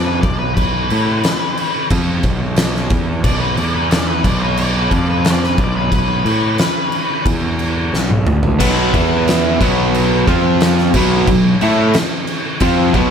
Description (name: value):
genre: blues rock power trio and southern rock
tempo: 90 BPM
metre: 4/4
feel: straight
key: unclear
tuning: A4 = 439 Hz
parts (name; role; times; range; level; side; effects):
- octave-fuzz lead guitar; melody; 0.0-7.2 s; B4 to D5; -20 LUFS; left 2 dB; distortion
- fuzz picked electric bass; bass; 0.0-13.1 s; B1 to A2; -18 LUFS; equal; overdrive
- oversized low-tuned drum kit; drums; 0.2-13.1 s; crash cymbal, kick drum, snare drum, toms; -17 LUFS; equal; none
- crunchy overdriven guitar; riff; 8.6-13.1 s; B2 to A4; -14 LUFS; equal; none
room: light reverb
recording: none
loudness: -13 LUFS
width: side -7 dB against mid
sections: 0.0-8.6 A section; 8.6-13.1 B section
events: lead electric guitar solo 0.0-8.6; drum fill 7.9-8.6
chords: 0.2 N.C.; 3.6 Bmadd11/E; 4.3 Bm; 4.9 Bdim/F; 5.6 B7(no3); 7.3 N.C.; 7.9 Bm; 8.6 B5; 8.9 E5; 9.6 B5; 10.3 F5; 10.9 B5